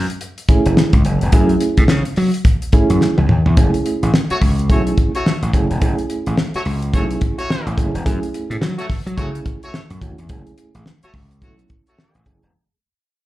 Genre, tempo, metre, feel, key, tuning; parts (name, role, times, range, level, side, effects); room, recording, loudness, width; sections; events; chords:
funk; 107 BPM; 4/4; swing 60% on 16ths; F# minor; A4 = 439 Hz
gritty slap bass; bass; 0.0-12.5 s; E1 to F#3; -18 LUFS; equal; overdrive
damped 70s drum kit; drums; 0.1-12.5 s; hi-hat, kick drum, snare drum, toms; -16 LUFS; equal
reed electric piano; stabs; 0.5-12.4 s; G#3 to A4; -21 LUFS; right 3 dB; fast tremolo, slapback echo
clear horn section; second line; 4.3-12.2 s; A3 to C#5; -25 LUFS; left 1 dB; slapback echo
small room ambience; live gig heard through the venue's PA, club reverb; -14 LUFS; side -16 dB against mid
0.0-3.6 A section; 3.6-12.5 B section
drum fill 3.0-3.6; fade-out 3.6-12.5
0.0 F#m7